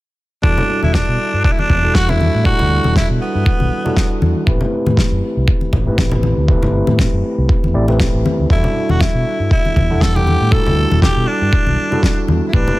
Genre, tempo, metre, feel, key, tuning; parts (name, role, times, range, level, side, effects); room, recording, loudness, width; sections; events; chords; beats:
nu-disco, nu disco; 119 BPM; 4/4; swing 56% on 16ths; E minor; A4 = 440 Hz
growling tenor saxophone; melody; 0.4-4.2, 8.5-12.8 s; B3 to A4; -20 LUFS; equal; ping-pong delay
overdriven tine electric piano; accompaniment; 0.4-12.8 s; G3 to F#5; -20 LUFS; equal; sidechain pumping, low-pass filter, digital delay
fingered electric bass with an envelope filter; bass; 0.4-12.6 s; E1 to B2; -17 LUFS; equal; sidechain pumping
electronic kick drum; drums; 0.4-12.6 s; -16 LUFS; equal; overdrive
congas; percussion; 0.6-12.8 s; -22 LUFS; left 2 dB
snare drum; drums; 0.9-12.2 s; -23 LUFS; left 1 dB
studio ambience; -13 LUFS; side -18 dB against mid
0.4-12.8 A section
filter sweep on tine electric piano 0.4-12.8
0.4 Em11; 4.5 Am9; 8.5 Em11
| 0.44 0.94 1.45 1.95 | 2.45 2.96 3.46 3.97 | 4.47 4.97 5.48 5.98 | 6.49 6.99 7.50 8.00 | 8.51 9.01 9.51 10.02 | 10.52 11.03 11.53 12.03 | 12.54